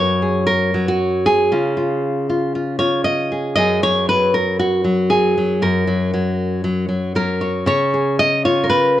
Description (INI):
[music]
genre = folk, solo fingerstyle acoustic guitar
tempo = 117 BPM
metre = 4/4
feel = straight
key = F# major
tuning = A4 = 440 Hz
[part]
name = nylon-string guitar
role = solo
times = 0.0-9.0 s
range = F#2 to D#5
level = -15 LUFS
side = equal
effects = none
[sound]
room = light reverb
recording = dark, warm production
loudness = -15 LUFS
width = side -13 dB against mid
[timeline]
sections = 0.0-7.7 A section; 7.7-9.0 B section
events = none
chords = 0.0 F#add9; 1.5 C#add9; 3.6 F#sus2; 5.6 F#; 7.7 C#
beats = 0.48 1.00 | 1.52 2.03 2.54 3.05 | 3.56 4.07 4.58 5.09 | 5.61 6.12 6.63 7.16 | 7.68 8.20 8.72